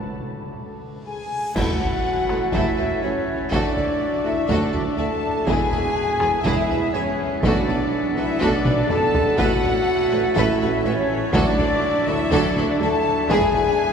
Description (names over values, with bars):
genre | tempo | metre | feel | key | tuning
cinematic, epic orchestral film score | 123 BPM | 4/4 | straight | unclear | A4 = 440 Hz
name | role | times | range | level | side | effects
reverse cymbal and sub drop | sound effects | 1.3-3.5 s | none | -38 LUFS | equal | none
warm symphonic violin section | melody | 1.1-13.9 s | C#5 to A5 | -32 LUFS | left 3 dB | none
hollow small flute group | second line | 1.1-13.9 s | C#5 to A5 | -27 LUFS | left 2 dB | none
warm French horn section | sustained chords | 1.1-13.9 s | C#4 to A4 | -23 LUFS | equal | none
bright woodwind section | sustained chords | 1.5-13.9 s | B3 to F#5 | -31 LUFS | equal | none
clear studio violin section | second line | 1.6-13.6 s | E4 to E5 | -31 LUFS | left 2 dB | none
rich studio viola section | accompaniment | 1.6-13.6 s | F#3 to B4 | -29 LUFS | right 2 dB | none
rich symphonic cello section | bass | 1.6-13.6 s | D2 to B2 | -31 LUFS | right 3 dB | none
rich symphonic double bass section | bass | 1.6-13.6 s | E1 to D2 | -30 LUFS | right 2 dB | none
warm tuba | bass | 1.6-13.6 s | E1 to D2 | -30 LUFS | right 2 dB | none
taiko ensemble | drums | 1.6-13.8 s | none | -28 LUFS | equal | none
clash cymbals and concert bass drum | percussion | 1.6-2.5 s | none | -32 LUFS | equal | none
room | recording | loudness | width
wet cathedral reverb, RT60 6.7 s | recorded in a church or concert hall | -18 LUFS | side -6 dB against mid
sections
0.0-1.6 A section; 1.6-13.9 B section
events
break 0.0-1.6; drum fill 0.8-1.6, 8.7-9.4; reverse cymbal 1.3-1.6; band accent 1.6-2.0; impact 1.6-3.5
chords
0.0 N.C.; 1.6 Aadd9; 3.5 Dadd9; 5.5 E; 7.4 Bm7; 9.4 Aadd9; 11.3 Dadd9; 13.3 E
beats
0.09 0.58 1.07 | 1.56 2.04 2.54 3.02 | 3.51 4.00 4.49 4.98 | 5.47 5.96 6.45 6.94 | 7.43 7.92 8.40 8.89 | 9.38 9.87 10.36 10.85 | 11.34 11.83 12.32 12.81 | 13.30 13.79